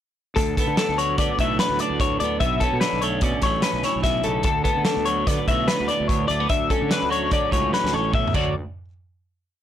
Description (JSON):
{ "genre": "math rock and midwest emo", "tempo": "147 BPM", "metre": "5/4", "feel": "straight", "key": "D major", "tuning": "A4 = 440 Hz", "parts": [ { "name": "twelve-string electric guitar", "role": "accompaniment", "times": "0.4-8.5 s", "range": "D2 to A4", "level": "-26 LUFS", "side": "right 9 dB", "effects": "none" }, { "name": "twelve-string electric guitar", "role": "arpeggios", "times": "0.4-8.5 s", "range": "A4 to E5", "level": "-23 LUFS", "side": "left 7 dB", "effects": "none" }, { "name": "fuzz fingered electric bass", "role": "bass", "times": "0.4-8.5 s", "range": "A1 to D3", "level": "-29 LUFS", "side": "right 1 dB", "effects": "overdrive" }, { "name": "loose indie drum kit", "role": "drums", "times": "0.4-8.4 s", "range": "crash cymbal, hi-hat, kick drum, snare drum, toms", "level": "-25 LUFS", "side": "right 1 dB", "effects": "none" } ], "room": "little or no reverb", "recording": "blown-out, overdriven recording, overdrive", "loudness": "-19 LUFS", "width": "side -10 dB against mid", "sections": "0.4-8.6 A section; 8.6-9.6 final hit", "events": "drum fill 7.7-8.6", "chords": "0.4 D6; 2.4 Bm11; 4.5 D6; 6.5 Dmaj7; 8.6 N.C." }